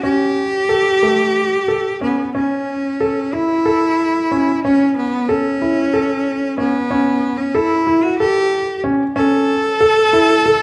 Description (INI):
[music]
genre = contemporary instrumental, contemporary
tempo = 185 BPM (eighths)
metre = 7/8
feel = straight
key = A mixolydian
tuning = A4 = 439 Hz
[part]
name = bright cello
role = melody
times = 0.0-10.6 s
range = B3 to A4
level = -18 LUFS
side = equal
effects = none
[part]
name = warm concert grand piano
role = arpeggios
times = 0.0-10.6 s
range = A3 to A4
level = -20 LUFS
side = equal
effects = none
[sound]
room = moderate recital hall reverb, RT60 1.5 s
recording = dark, warm production, lossy compression artefacts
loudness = -16 LUFS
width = mono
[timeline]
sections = 0.0-2.4 A section; 2.4-10.6 B section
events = none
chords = 0.0 A7; 2.4 A